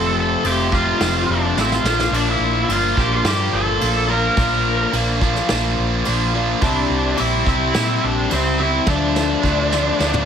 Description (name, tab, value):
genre	quiet-loud alternative rock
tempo	107 BPM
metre	4/4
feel	straight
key	unclear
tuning	A4 = 436 Hz
part	octave-fuzz lead guitar	melody	0.0-10.3 s	C4 to Bb5	-20 LUFS	left 1 dB	distortion, plate reverb
part	crunchy overdriven guitar	riff	0.0-10.3 s	F2 to E4	-22 LUFS	right 12 dB	none
part	distorted electric guitar	riff	0.0-10.3 s	F2 to E4	-23 LUFS	left 9 dB	distortion
part	hollow-body short-scale fingered electric bass	bass	0.0-10.2 s	F1 to Bb2	-23 LUFS	right 1 dB	none
part	vintage brush drum kit	drums	0.4-10.3 s	crash cymbal, kick drum, snare drum, toms	-25 LUFS	equal	none
room	light reverb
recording	none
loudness	-16 LUFS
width	side -8 dB against mid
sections	0.0-10.3 A section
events	drum fill 1.6-2.1, 8.9-10.3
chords	0.0 F; 1.8 Bb; 6.6 C; 8.9 Dm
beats	0.44 1.00 1.57 | 2.13 2.69 3.25 3.81 | 4.38 4.94 5.50 6.06 | 6.62 7.18 7.75 8.31 | 8.87 9.44 10.00